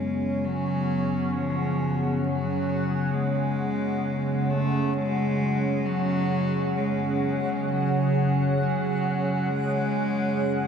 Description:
dark ambient drone; 66 BPM; 4/4; straight; A4 = 440 Hz
rich cello; melody; 0.0-10.7 s; E#3 to A3; -28 LUFS; equal; diffuse ambient delay
sweeping resonant pad; sustained chords; 0.0-10.7 s; C#4 to F#5; -28 LUFS; right 2 dB; chorus
bronze singing bowl; arpeggios; 0.0-1.8 s; B3; -37 LUFS; left 2 dB
organ-like drone; drone; 0.0-10.7 s; F#2 to C#3; -27 LUFS; left 1 dB; ensemble chorus, built-in reverb
backwards swelling texture; texture; 0.1-10.7 s; F#5; -46 LUFS; right 1 dB
wet huge ambient reverb, RT60 9.1 s; dark, warm production; -23 LUFS; side -7 dB against mid
0.0-10.7 A section
0.0 F#sus2

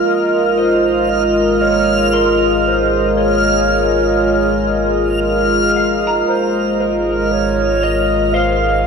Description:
ambient; 58 BPM; 3/4; straight; A4 = 439 Hz
warm analog pad; sustained chords; 0.0-8.9 s; F4 to Eb5; -16 LUFS; equal; chorus, shimmer reverb
analog drone; drone; 0.0-8.9 s; Ab3; -21 LUFS; right 1 dB; chorus
backwards swelling texture; texture; 0.0-8.9 s; F6; -20 LUFS; equal; built-in reverb, shimmer reverb
dark clarinet; melody; 0.1-8.9 s; Bb4 to F5; -21 LUFS; right 1 dB; shimmer reverb, ping-pong delay
warm sub bass; bass; 0.1-8.9 s; Ab1; -25 LUFS; left 1 dB
semi-hollow electric guitar; arpeggios; 0.6-8.9 s; C5 to C6; -26 LUFS; left 2 dB; ensemble chorus, shimmer reverb, ping-pong delay
wet lush hall reverb, RT60 2.9 s; cassette tape; -12 LUFS; side -5 dB against mid
0.0-8.9 A section
fade-in on clean electric guitar 0.0-8.9; fade-in on sub bass 0.0-8.9; fade-in on clarinet 0.0-8.9; fade-out on synth drone 0.0-8.9
0.1 Ebsus2/Ab

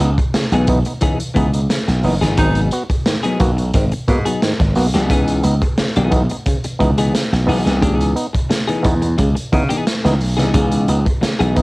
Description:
funk; 88 BPM; 4/4; straight; C# minor; A4 = 441 Hz
auto-wah clav; stabs; 0.0-11.6 s; G#2 to F#4; -21 LUFS; right 1 dB; overdrive
slap bass; bass; 0.0-11.6 s; F#1 to C#3; -16 LUFS; equal
crunchy breakbeat drum kit; drums; 0.0-11.6 s; hi-hat, kick drum, snare drum; -19 LUFS; equal
semi-hollow electric guitar; accompaniment; 0.2-11.6 s; E3 to G#4; -20 LUFS; left 2 dB; analog chorus
clear baritone saxophone; second line; 2.4-2.6 s; D#4; -20 LUFS; right 1 dB
little or no reverb; home recording on cassette; -14 LUFS; side -22 dB against mid
0.0-11.6 A section
band accent 2.4-5.1
0.0 C#m9; 2.4 G#m7; 5.1 C#m9

